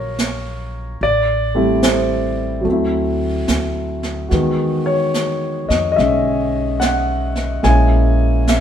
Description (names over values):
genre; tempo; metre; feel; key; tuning
jazz ballad; 72 BPM; 4/4; swing 66% on 8ths; unclear; A4 = 440 Hz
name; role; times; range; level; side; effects
warm grand piano; accompaniment; 0.0-8.6 s; D#3 to Ab5; -17 LUFS; left 1 dB; none
upright bass; bass; 0.0-8.6 s; A1 to F2; -20 LUFS; equal; none
jazz brush drum kit; drums; 0.2-8.6 s; brushed snare drum, hi-hat, snare drum; -22 LUFS; right 3 dB; none
room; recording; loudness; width
moderate stone room reverb, RT60 1.1 s; band playing live in one room; -15 LUFS; side -9 dB against mid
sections
0.0-8.6 A section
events
none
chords
0.0 Ebm9 (rootless); 1.0 Am7; 2.7 D9; 4.3 Emaj9; 7.6 Bbm7b5